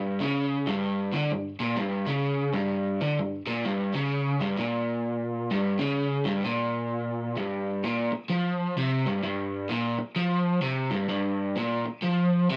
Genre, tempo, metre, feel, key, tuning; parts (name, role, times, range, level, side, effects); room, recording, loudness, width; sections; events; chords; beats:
rock; 129 BPM; 4/4; swing 62% on 8ths; A4 = 443 Hz
crunchy overdriven guitar; solo; 0.0-12.6 s; G2 to F3; -28 LUFS; equal
moderate studio reverb, RT60 0.7 s; band playing live in one room; -28 LUFS; mono
0.0-7.4 A section; 7.4-12.6 B section
0.40 0.86 1.32 | 1.79 2.25 2.72 3.18 | 3.64 4.11 4.57 5.04 | 5.50 5.96 6.43 6.89 | 7.36 7.83 8.29 8.76 | 9.22 9.69 10.16 10.63 | 11.09 11.56 12.03 12.50